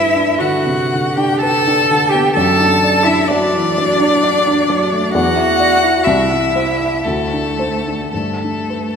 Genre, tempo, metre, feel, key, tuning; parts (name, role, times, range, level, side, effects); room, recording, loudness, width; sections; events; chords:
classical, slow romantic movement for piano trio; 52-68 BPM; 3/4; rubato; G major; A4 = 441 Hz
rich violin; melody; 0.0-9.0 s; A4 to A5; -17 LUFS; left 5 dB
rich cello; second line; 0.0-9.0 s; A3 to A4; -17 LUFS; right 5 dB
dark baby grand piano; accompaniment; 0.0-9.0 s; C2 to D5; -18 LUFS; equal
wet concert hall reverb, RT60 2.5 s; -12 LUFS; side -6 dB against mid
0.0-9.0 A section
0.0 G; 2.3 D/F#; 5.1 Dadd9/E; 6.0 C; 7.0 D5; 8.1 G